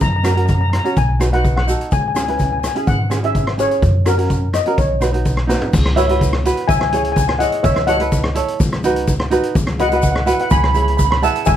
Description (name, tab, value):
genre	calypso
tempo	126 BPM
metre	4/4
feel	straight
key	C# minor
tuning	A4 = 439 Hz
part	steel pan	melody	0.0-11.6 s	A#4 to B5	-19 LUFS	left 2 dB	slapback echo
part	upright bass	bass	0.0-11.6 s	G#1 to F#2	-19 LUFS	equal	none
part	street-band drum kit	drums	0.0-11.6 s	crash cymbal, hi-hat, kick drum, rim click, snare drum, toms	-19 LUFS	equal	none
part	tube shaker	percussion	0.0-11.6 s	none	-34 LUFS	left 4 dB	none
part	tenor ukulele	accompaniment	0.2-11.5 s	C#4 to E5	-20 LUFS	right 4 dB	none
room	light reverb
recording	none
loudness	-14 LUFS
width	side -10 dB against mid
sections	0.0-5.7 A section; 5.7-11.6 B section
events	drum fill 5.5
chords	0.0 F#; 1.0 B; 1.9 C#m7; 3.8 F#; 4.8 Badd9; 5.7 Esus2/C#; 6.7 C#m; 7.6 A6/C#; 8.6 Badd9/C#; 9.6 Esus2/C#; 10.5 C#m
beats	| 0.01 0.49 0.97 1.44 | 1.92 2.40 2.87 3.35 | 3.83 4.31 4.78 5.26 | 5.74 6.21 6.69 7.17 | 7.64 8.12 8.60 9.08 | 9.55 10.03 10.51 10.99 | 11.46